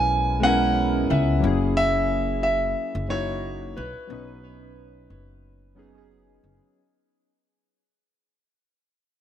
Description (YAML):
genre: sunset chillout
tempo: 90 BPM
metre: 4/4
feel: swing 53% on 16ths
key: unclear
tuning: A4 = 441 Hz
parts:
  - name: warm concert grand piano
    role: melody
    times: 0.0-6.1 s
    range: B4 to G#5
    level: -24 LUFS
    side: equal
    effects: tape echo
  - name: soft electric-piano-like synth keys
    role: accompaniment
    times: 0.0-6.8 s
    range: F#3 to B4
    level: -26 LUFS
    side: moving between left 4 dB and right 3 dB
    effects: chorus, auto-pan, tape echo
  - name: upright bass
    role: bass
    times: 0.0-6.6 s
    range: F#1 to C#2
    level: -27 LUFS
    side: equal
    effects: none
room: moderate plate reverb, RT60 2.8 s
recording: echo-heavy mix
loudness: -20 LUFS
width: side -10 dB against mid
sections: 0.0-6.8 A section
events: fade-out 0.0-6.8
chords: 0.0 C#m7; 1.4 F#13; 3.8 Badd9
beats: 0.10 0.77 | 1.44 2.10 2.77 3.44 | 4.10 4.77 5.44 6.10